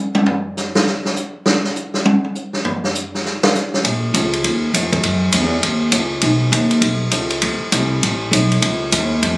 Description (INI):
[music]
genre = jazz, big band swing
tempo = 201 BPM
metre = 4/4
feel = swing 62% on 8ths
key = unclear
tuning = A4 = 440 Hz
[part]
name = swinging big-band drum kit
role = drums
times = 0.1-9.3 s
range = hi-hat, kick drum, ride cymbal, snare drum, toms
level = -17 LUFS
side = equal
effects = none
[part]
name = upright bass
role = bass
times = 3.8-9.4 s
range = A1 to Gb2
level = -17 LUFS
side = equal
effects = none
[sound]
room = light reverb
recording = recorded on a phone in the room, club ambience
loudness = -15 LUFS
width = side -23 dB against mid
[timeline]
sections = 0.0-3.8 A section; 3.8-9.4 B section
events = drum solo 0.0-3.8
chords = none